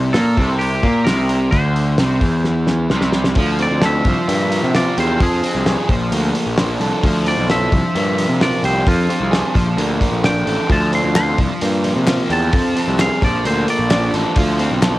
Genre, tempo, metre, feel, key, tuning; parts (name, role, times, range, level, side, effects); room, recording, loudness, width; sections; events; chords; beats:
indie rock; 131 BPM; 4/4; straight; C mixolydian; A4 = 439 Hz
twangy electric guitar; melody; 0.0-14.1 s; F4 to C6; -23 LUFS; equal; cassette tape
fuzz guitar; riff; 0.0-15.0 s; C3 to A4; -20 LUFS; right 1 dB; distortion, cassette tape
fuzz picked electric bass; bass; 0.0-15.0 s; A1 to C3; -19 LUFS; equal; overdrive
cloth-damped thuddy drum kit; drums; 0.1-14.9 s; hi-hat, kick drum, snare drum; -20 LUFS; equal; cassette tape
dark analog pad; sustained chords; 3.4-15.0 s; C3 to G5; -30 LUFS; left 1 dB
group handclap; percussion; 11.2-14.9 s; -26 LUFS; left 5 dB
light reverb; home recording on cassette; -14 LUFS; side -17 dB against mid
0.0-3.4 A section; 3.4-15.0 B section
drum fill 2.4-3.4; clean electric guitar solo 3.4-15.0
0.0 C; 3.4 Dm7; 4.1 C7sus4; 5.2 Fm6; 5.9 Bbmaj7; 7.0 Dm7; 7.7 C7sus4; 8.9 Fm6; 9.6 Bbmaj7; 10.7 Dm7; 11.4 C7sus4; 12.5 Fm6; 13.2 Bbmaj7; 14.4 Dm7
0.14 0.60 1.06 | 1.52 1.99 2.44 2.90 | 3.36 3.82 4.28 4.74 | 5.20 5.66 6.12 6.58 | 7.04 7.50 7.95 8.41 | 8.87 9.33 9.79 10.24 | 10.70 11.16 11.62 12.07 | 12.53 12.99 13.44 13.90 | 14.36 14.82